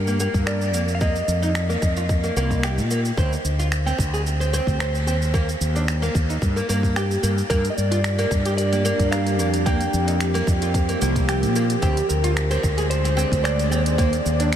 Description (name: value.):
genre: organic downtempo.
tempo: 111 BPM.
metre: 4/4.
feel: straight.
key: unclear.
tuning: A4 = 440 Hz.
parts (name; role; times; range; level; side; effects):
clean lap steel guitar; melody; 0.0-2.6, 7.5-14.6 s; G4 to G5; -28 LUFS; equal; analog delay.
mellow fretless electric bass; bass; 0.0-14.6 s; C2 to Bb2; -22 LUFS; equal; none.
oud; arpeggios; 0.1-14.5 s; Bb3 to C5; -26 LUFS; equal; low-pass filter, analog delay.
organic electronic drum kit; drums; 0.1-14.6 s; finger snaps, hi-hat, shaker; -29 LUFS; right 1 dB; none.
electronic kick drum; drums; 0.3-14.1 s; none; -23 LUFS; equal; none.
bowed-like drone; sustained chords; 8.2-14.6 s; C3 to D5; -27 LUFS; equal; built-in reverb, sidechain pumping.
room: moderate huge ambient reverb, RT60 7.4 s.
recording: dreamy mix soaked in reverb.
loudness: -19 LUFS.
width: side -10 dB against mid.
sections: 0.0-14.6 A section.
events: none.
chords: 0.0 Gm7; 1.0 F7sus4; 3.2 D7(no3); 5.3 Eb; 7.5 Gm7; 9.7 Fsus4; 11.8 D7(b5, no3); 14.0 Cm9/Eb.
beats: 0.47 | 1.01 1.56 2.10 2.64 | 3.18 3.72 4.26 4.80 | 5.34 5.88 6.42 6.96 | 7.50 8.04 8.58 9.12 | 9.66 10.20 10.74 11.29 | 11.83 12.37 12.91 13.45 | 13.99 14.53.